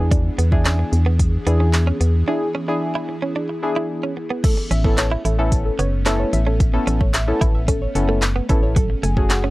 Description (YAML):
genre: dance-pop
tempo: 111 BPM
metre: 4/4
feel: straight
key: A major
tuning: A4 = 440 Hz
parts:
  - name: deep mellow chord stab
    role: accompaniment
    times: 0.0-9.4 s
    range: A3 to A4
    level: -23 LUFS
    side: left 1 dB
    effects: chorus, sidechain pumping
  - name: airy breathy pad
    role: sustained chords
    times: 0.0-9.5 s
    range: E3 to G#4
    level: -29 LUFS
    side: left 1 dB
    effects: chorus, sidechain pumping
  - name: direct-recorded clean electric guitar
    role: riff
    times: 0.0-9.5 s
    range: F#3 to E4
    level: -26 LUFS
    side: right 4 dB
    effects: wide subtle chorus
  - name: organ-like FM bass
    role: bass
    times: 0.0-9.5 s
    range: F#1 to E2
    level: -19 LUFS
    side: equal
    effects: sidechain pumping
  - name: deep house drum kit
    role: drums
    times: 0.1-9.4 s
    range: crash cymbal, handclaps, hi-hat, kick drum, snare drum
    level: -19 LUFS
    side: equal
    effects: none
  - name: soft round pluck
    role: arpeggios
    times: 4.4-9.4 s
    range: A4 to G#5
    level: -28 LUFS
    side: equal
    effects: chorus, sidechain pumping, tape echo
  - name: group handclap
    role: percussion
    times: 5.0-9.4 s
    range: none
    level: -32 LUFS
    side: left 2 dB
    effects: none
room: little or no reverb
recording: dry, gritty hardware recording, cassette tape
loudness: -17 LUFS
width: side -19 dB against mid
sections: 0.0-4.4 A section; 4.4-9.5 B section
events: break 2.3-4.4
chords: 0.0 E7; 4.4 Aadd9; 8.8 F#madd9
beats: | 0.11 0.66 1.20 1.74 | 2.28 2.82 3.36 3.90 | 4.44 4.98 5.52 6.06 | 6.60 7.14 7.68 8.22 | 8.76 9.30